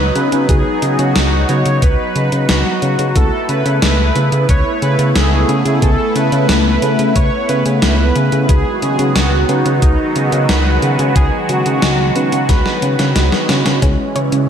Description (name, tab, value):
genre	synthwave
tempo	90 BPM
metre	4/4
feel	straight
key	unclear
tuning	A4 = 440 Hz
part	soft supersaw	melody	0.0-13.4 s	D#4 to C#5	-19 LUFS	right 1 dB	cassette tape, tape echo
part	phased analog pad	sustained chords	0.0-14.5 s	D#3 to F#4	-18 LUFS	equal	phaser, chorus, sidechain pumping
part	mellow FM electric piano	stabs	0.0-14.5 s	F#3 to C#5	-25 LUFS	equal	none
part	fat analog bass	bass	0.0-14.5 s	C#2 to C#3	-16 LUFS	equal	none
part	gated 80s digital drum machine	drums	0.2-14.5 s	hi-hat, snare drum	-19 LUFS	left 1 dB	gated reverb, gated reverb snare
part	electronic kick drum	drums	0.5-14.0 s	none	-14 LUFS	equal	none
part	wide unison pluck	arpeggios	13.8-14.4 s	C#4 to C#5	-24 LUFS	left 2 dB	tape echo
part	riser	sound effects	14.4-14.5 s	none	-32 LUFS	right 1 dB	none
room	moderate lush hall reverb, RT60 1.7 s, digital ambience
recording	dreamy mix soaked in reverb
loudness	-12 LUFS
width	side -8 dB against mid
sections	0.0-13.8 A section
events	drum fill 12.5-13.8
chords	0.0 B/C#; 3.2 Asus2/C#; 8.5 G#m7/C#; 13.8 C#m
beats	| 0.49 1.16 1.82 2.49 | 3.16 3.82 4.49 5.16 | 5.82 6.49 7.16 7.82 | 8.49 9.16 9.82 10.49 | 11.16 11.82 12.49 13.16 | 13.82 14.49